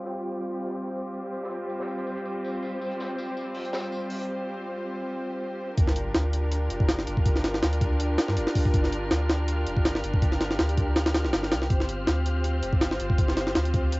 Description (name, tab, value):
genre	drum and bass, jungle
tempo	162 BPM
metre	4/4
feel	swing 54% on 16ths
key	G minor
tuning	A4 = 443 Hz
part	muted studio string section	sustained chords	0.0-14.0 s	G3 to C5	-30 LUFS	equal	vintage 12-bit sampler grit, cassette tape
part	crunchy breakbeat drum kit	drums	0.0-4.3 s	hi-hat, snare drum, tambourine	-40 LUFS	left 1 dB	high-pass filter on hats, cassette tape, high-pass filter on snare, high-pass filter on perc, high-pass filter on room
part	wind-like tuned noise texture	texture	0.0-14.0 s	D6 to F6	-44 LUFS	left 1 dB	built-in reverb, cassette tape
part	soft dub sub bass	bass	5.8-14.0 s	F1 to G2	-28 LUFS	equal	none
part	jungle sampler-style drum kit	drums	5.8-14.0 s	hi-hat, kick drum, snare drum	-24 LUFS	equal	cassette tape
part	sub drop	sound effects	5.8-7.3 s	none	-35 LUFS	equal	none
room	light reverb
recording	home recording on cassette, vinyl crackle, low-pass filter, nothing above 7.8 kHz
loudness	-24 LUFS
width	side -23 dB against mid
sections	0.0-5.8 A section; 5.8-14.0 B section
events	filter sweep 0.0-5.8; drop 5.8-14.0; impact 5.8-7.3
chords	0.0 Fsus2/G; 5.8 Gm7; 11.7 Fsus2